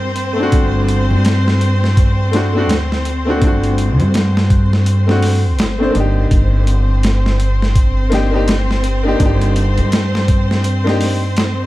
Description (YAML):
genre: trip hop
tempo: 83 BPM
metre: 4/4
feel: swing 60% on 16ths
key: unclear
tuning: A4 = 438 Hz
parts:
  - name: clear studio violin section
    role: sustained chords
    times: 0.0-11.7 s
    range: C4 to C5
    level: -23 LUFS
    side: equal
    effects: none
  - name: upright bass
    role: bass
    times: 0.0-11.7 s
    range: G1 to G2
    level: -15 LUFS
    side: equal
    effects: none
  - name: boom bap sampler-style drum kit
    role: drums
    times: 0.2-11.6 s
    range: hi-hat, kick drum, snare drum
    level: -17 LUFS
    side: equal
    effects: studio ambience
  - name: clear upright piano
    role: accompaniment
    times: 0.3-11.2 s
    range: A3 to C5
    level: -20 LUFS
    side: left 1 dB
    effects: tremolo, tape echo
room: little or no reverb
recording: dark, warm production, vinyl crackle, faint mains hum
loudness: -12 LUFS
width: side -16 dB against mid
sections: 0.0-11.7 A section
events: none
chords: 0.0 G5; 0.5 D7/G; 6.3 Ebmaj7/G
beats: | 0.53 1.25 1.97 2.69 | 3.42 4.14 4.86 5.58 | 6.31 7.03 7.75 8.48 | 9.20 9.92 10.64 11.37